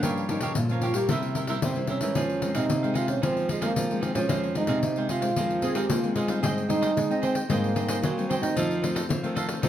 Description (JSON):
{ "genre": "samba and choro", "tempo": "113 BPM", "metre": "4/4", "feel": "straight", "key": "F minor, Ab major from 6.4 s", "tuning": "A4 = 440 Hz", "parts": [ { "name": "breathy trombone", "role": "melody", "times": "0.0-8.9 s", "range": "Ab3 to F4", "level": "-28 LUFS", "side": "right 3 dB", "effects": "plate reverb" }, { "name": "cavaquinho", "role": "accompaniment", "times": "0.0-9.7 s", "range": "Eb4 to G5", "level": "-34 LUFS", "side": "right 4 dB", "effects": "none" }, { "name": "nylon-string guitar", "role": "accompaniment", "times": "0.0-9.7 s", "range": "F2 to E4", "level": "-31 LUFS", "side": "left 4 dB", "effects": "none" }, { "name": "nylon-string guitar", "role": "bass", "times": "0.0-9.7 s", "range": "G2 to C4", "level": "-30 LUFS", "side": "equal", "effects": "none" }, { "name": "pandeiro", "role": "percussion", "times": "0.0-9.7 s", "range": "none", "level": "-30 LUFS", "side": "left 3 dB", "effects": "none" }, { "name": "warm velvety synth lead", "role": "second line", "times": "0.3-1.5, 5.6-6.4 s", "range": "Eb4 to Ab4", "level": "-31 LUFS", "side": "equal", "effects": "chorus" } ], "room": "moderate studio reverb, RT60 0.6 s", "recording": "faint mains hum", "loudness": "-24 LUFS", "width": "side -11 dB against mid", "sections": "0.0-6.4 A section; 6.4-9.7 B section", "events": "none", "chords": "0.0 Gm7b5; 1.1 C7; 2.2 Fm7; 6.4 Abmaj7; 8.6 F7", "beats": "| 0.04 0.57 1.10 1.64 | 2.17 2.70 3.23 3.77 | 4.30 4.83 5.37 5.90 | 6.43 6.96 7.50 8.03 | 8.56 9.09 9.63" }